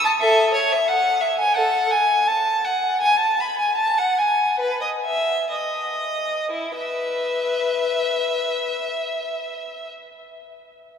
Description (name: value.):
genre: classical, baroque-style suite movement for unaccompanied violin.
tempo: 58-94 BPM.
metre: 4/4.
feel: rubato.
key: E major.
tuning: A4 = 440 Hz.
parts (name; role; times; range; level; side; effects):
rich violin; solo; 0.0-9.9 s; E4 to B5; -19 LUFS; left 1 dB; none.
room: wet cathedral reverb, RT60 5.9 s.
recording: recorded in a church or concert hall.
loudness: -19 LUFS.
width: side -7 dB against mid.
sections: 0.0-6.5 A section; 6.5-10.5 B section.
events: slowing down 0.0-6.5.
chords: none.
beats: | 0.21 0.87 1.56 2.27 | 3.01 3.79 4.61 5.50 | 6.50 7.50 8.51 9.49.